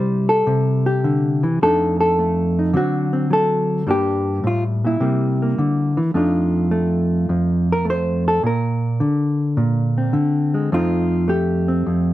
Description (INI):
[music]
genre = solo jazz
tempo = 105 BPM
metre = 4/4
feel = swing 69% on 8ths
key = F mixolydian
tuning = A4 = 438 Hz
[part]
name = hollow-body jazz guitar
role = solo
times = 0.0-12.1 s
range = F2 to C5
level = -16 LUFS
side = equal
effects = none
[sound]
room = moderate studio reverb, RT60 0.5 s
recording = dark, warm production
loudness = -16 LUFS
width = side -14 dB against mid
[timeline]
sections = 0.0-6.2 A section; 6.2-12.1 B section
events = hollow-body jazz guitar solo 6.2-12.1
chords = 0.0 C69; 1.6 F6; 2.7 D7; 3.9 Gm; 5.0 C9; 6.2 F6; 8.4 Bbadd9; 10.7 F9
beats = 0.47 1.03 | 1.60 2.17 2.74 3.31 | 3.88 4.45 5.02 5.59 | 6.16 6.73 7.30 7.87 | 8.44 9.00 9.57 10.14 | 10.71 11.28 11.85